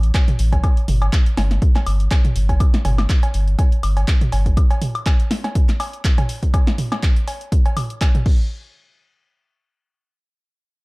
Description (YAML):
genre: acid house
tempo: 122 BPM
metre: 4/4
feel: swing 55% on 16ths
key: unclear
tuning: A4 = 440 Hz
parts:
  - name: warm sub bass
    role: bass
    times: 0.0-4.5 s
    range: G1 to A1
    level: -17 LUFS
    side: equal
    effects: sidechain pumping
  - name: punchy analog drum machine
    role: drums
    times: 0.0-8.4 s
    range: cowbell, crash cymbal, handclaps, hi-hat, snare drum, toms, woodblock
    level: -24 LUFS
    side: equal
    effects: none
  - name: electronic kick drum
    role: drums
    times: 0.1-8.4 s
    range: none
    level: -16 LUFS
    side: equal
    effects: none
room: little or no reverb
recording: dark, warm production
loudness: -15 LUFS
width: side -25 dB against mid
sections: 0.0-8.5 A section; 8.5-10.8 B section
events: drop 0.0-8.5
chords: none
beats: 0.14 | 0.64 1.13 1.62 2.11 | 2.60 3.10 3.59 4.08 | 4.57 5.06 5.55 6.04 | 6.54 7.03 7.52 8.01